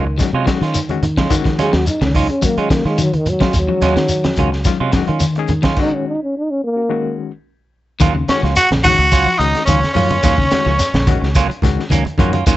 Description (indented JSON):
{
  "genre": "afrobeat",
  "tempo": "108 BPM",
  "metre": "4/4",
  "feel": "straight",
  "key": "Eb minor",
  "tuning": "A4 = 439 Hz",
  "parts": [
    { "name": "trombone with bucket mute", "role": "melody", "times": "0.0-7.2 s", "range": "Eb3 to Ab4", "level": "-19 LUFS", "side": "equal", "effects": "none" },
    { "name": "overdriven reed electric piano", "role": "accompaniment", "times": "0.0-12.4 s", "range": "Eb3 to Ab4", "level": "-23 LUFS", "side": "left 8 dB", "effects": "fast tremolo" },
    { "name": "semi-hollow electric guitar", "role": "stabs", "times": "0.0-12.6 s", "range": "Gb3 to F4", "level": "-22 LUFS", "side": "right 6 dB", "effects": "none" },
    { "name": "fingered electric bass", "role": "bass", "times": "0.0-12.6 s", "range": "Bb1 to Eb3", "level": "-19 LUFS", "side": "equal", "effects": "none" },
    { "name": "clean electric guitar", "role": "arpeggios", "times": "0.2-12.6 s", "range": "Db3 to Gb3", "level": "-24 LUFS", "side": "left 5 dB", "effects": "spring reverb" },
    { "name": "crunchy breakbeat drum kit", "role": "drums", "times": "0.2-12.6 s", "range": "crash cymbal, hi-hat, kick drum, snare drum", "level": "-19 LUFS", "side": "equal", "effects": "none" },
    { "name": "congas", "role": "percussion", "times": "0.2-12.6 s", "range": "none", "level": "-23 LUFS", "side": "right 2 dB", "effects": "none" },
    { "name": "shekere", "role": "percussion", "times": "0.2-12.6 s", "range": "none", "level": "-23 LUFS", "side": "left 1 dB", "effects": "none" },
    { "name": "growling tenor saxophone", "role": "melody", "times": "8.3-11.6 s", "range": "Db4 to Gb4", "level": "-16 LUFS", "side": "equal", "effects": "none" },
    { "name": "bright trumpet", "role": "second line", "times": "8.3-11.6 s", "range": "Db5 to Gb5", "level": "-26 LUFS", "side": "right 1 dB", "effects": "none" },
    { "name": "celesta", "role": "second line", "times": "8.3-11.6 s", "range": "Db6 to Gb6", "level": "-28 LUFS", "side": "left 5 dB", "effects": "none" }
  ],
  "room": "light reverb",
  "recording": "nothing above 8.0 kHz, faint mains hum",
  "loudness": "-13 LUFS",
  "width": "side -15 dB against mid",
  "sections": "0.0-8.0 A section; 8.0-12.6 B section",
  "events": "trombone solo 0.0-8.0; stop 5.8-8.0",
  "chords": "0.0 Ebm11; 8.0 Ebm9"
}